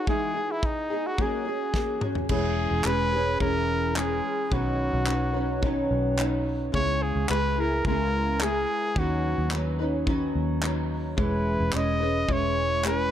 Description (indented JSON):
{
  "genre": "acoustic pop",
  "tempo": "108 BPM",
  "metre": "4/4",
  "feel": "straight",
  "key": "unclear",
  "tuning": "A4 = 440 Hz",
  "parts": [
    { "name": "clear trumpet", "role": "melody", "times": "0.0-13.1 s", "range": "D#4 to D#5", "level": "-28 LUFS", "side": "equal", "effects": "analog delay" },
    { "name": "nylon-string guitar", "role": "accompaniment", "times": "0.0-13.1 s", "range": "B2 to B4", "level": "-28 LUFS", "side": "left 1 dB", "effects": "double-tracked left and right" },
    { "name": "modern studio drum kit", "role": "drums", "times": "0.1-13.0 s", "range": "crash cymbal, handclaps, kick drum, snare drum, toms", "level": "-30 LUFS", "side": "equal", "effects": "none" },
    { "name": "vintage muted fingered electric bass", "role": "bass", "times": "2.3-13.1 s", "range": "E1 to D#2", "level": "-29 LUFS", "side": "equal", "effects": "none" }
  ],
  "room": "light reverb, small room ambience",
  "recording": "dark, warm production",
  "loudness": "-23 LUFS",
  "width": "side -10 dB against mid",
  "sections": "0.0-2.3 A section; 2.3-13.1 B section",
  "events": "drum fill 1.7-2.3",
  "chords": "0.0 Emaj7; 1.2 F#add9; 2.3 E6; 4.5 Badd9; 6.7 C#m7; 9.0 Badd9/D#; 11.2 E6"
}